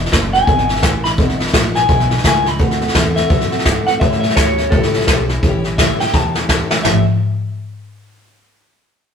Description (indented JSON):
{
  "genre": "rockabilly",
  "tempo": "170 BPM",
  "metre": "4/4",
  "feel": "swing 61% on 8ths",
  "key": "unclear",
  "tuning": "A4 = 440 Hz",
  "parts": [
    { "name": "picked steel-string acoustic guitar", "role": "accompaniment", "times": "0.0-7.0 s", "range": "E2 to F#4", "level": "-23 LUFS", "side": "left 2 dB", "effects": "none" },
    { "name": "upright bass", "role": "bass", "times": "0.0-7.0 s", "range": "E1 to A2", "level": "-21 LUFS", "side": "right 1 dB", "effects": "none" },
    { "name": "jazz brush drum kit", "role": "drums", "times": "0.1-6.9 s", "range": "crash cymbal, hi-hat, kick drum, snare drum, toms", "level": "-15 LUFS", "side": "equal", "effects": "none" },
    { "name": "electric guitar through a small old amp", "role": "melody", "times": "0.3-7.0 s", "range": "A4 to B5", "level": "-18 LUFS", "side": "left 2 dB", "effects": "none" }
  ],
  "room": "moderate stone room reverb, RT60 1.1 s",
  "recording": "rough rehearsal-room recording",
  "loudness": "-12 LUFS",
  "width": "side -7 dB against mid",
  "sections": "0.0-5.4 A section; 5.4-6.8 B section; 6.8-8.3 C section",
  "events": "drum fill 6.1-6.8",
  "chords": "0.0 E7; 2.6 D7; 4.0 A7",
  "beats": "0.12 0.48 0.83 | 1.19 1.54 1.89 2.25 | 2.60 2.95 3.31 3.66 | 4.01 4.37 4.72 5.08 | 5.43 5.79 6.14 6.50 | 6.85"
}